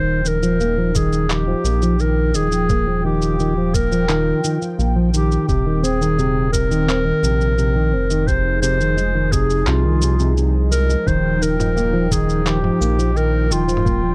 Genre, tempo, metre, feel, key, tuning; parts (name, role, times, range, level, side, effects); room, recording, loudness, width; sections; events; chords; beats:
folktronica; 86 BPM; 4/4; straight; Eb major; A4 = 440 Hz
warm clarinet; melody; 0.0-14.1 s; F4 to C5; -24 LUFS; equal; vintage 12-bit sampler grit
warm analog pad; sustained chords; 0.0-14.1 s; Eb3 to G5; -29 LUFS; equal; chorus
nylon-string guitar; arpeggios; 0.0-14.1 s; C3 to C4; -24 LUFS; equal; low-pass filter
round analog bass; bass; 0.0-14.1 s; Eb1 to C2; -22 LUFS; equal; tube saturation
lo-fi sampler-style drum kit; drums; 0.3-14.0 s; handclaps, shaker, toms; -29 LUFS; equal; small room ambience
electronic kick drum; drums; 1.0-14.0 s; -23 LUFS; equal; small room ambience
little or no reverb; dry, close 1970s-style studio recording; -18 LUFS; mono
0.0-14.1 A section
filter sweep on nylon-string guitar 0.0-14.1
0.0 Ebadd9; 5.5 Cm/Eb; 8.3 Fm7; 11.1 Ebadd9
0.60 1.30 2.00 | 2.70 3.40 4.09 4.79 | 5.49 6.18 6.88 7.58 | 8.28 8.98 9.67 10.37 | 11.07 11.77 12.46 13.16 | 13.86